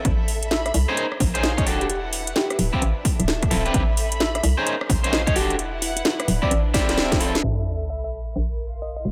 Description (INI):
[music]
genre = UK garage, two-step garage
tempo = 130 BPM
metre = 4/4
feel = swing 63% on 16ths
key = A minor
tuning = A4 = 440 Hz
[part]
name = hollow knocking FM bass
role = bass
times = 0.0-9.1 s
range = D1 to C2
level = -27 LUFS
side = equal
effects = sidechain pumping
[part]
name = electronic kick drum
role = drums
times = 0.0-7.2 s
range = none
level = -26 LUFS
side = equal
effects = overdrive
[part]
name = dark studio string section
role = texture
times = 0.0-9.1 s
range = D4 to C6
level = -35 LUFS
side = equal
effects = sidechain pumping
[part]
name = house drum kit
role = drums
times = 0.1-7.4 s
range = hi-hat, rim click, snare drum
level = -27 LUFS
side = equal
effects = overdrive
[part]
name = bell-like FM electric piano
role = melody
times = 0.5-9.0 s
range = E4 to E5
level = -32 LUFS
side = equal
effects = chorus, delay
[part]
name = electric guitar at the edge of break-up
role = stabs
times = 0.9-7.3 s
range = C4 to Db5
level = -29 LUFS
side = equal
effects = spring reverb, delay
[part]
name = sub drop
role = sound effects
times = 7.4-9.1 s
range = none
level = -31 LUFS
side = equal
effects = none
[sound]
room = digital ambience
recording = low-pass filter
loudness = -22 LUFS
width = mono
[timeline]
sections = 0.0-7.4 A section; 7.4-9.1 B section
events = drum fill 6.7-7.4; impact 7.4-9.1; filter sweep 7.4-9.1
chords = 0.1 Amadd9; 1.0 Bbm11; 1.7 Em11; 2.6 Dm11; 3.7 Amadd9; 4.7 Bbm11; 5.4 Em11; 6.3 Dm11; 7.4 Asus24; 8.4 Bbsus2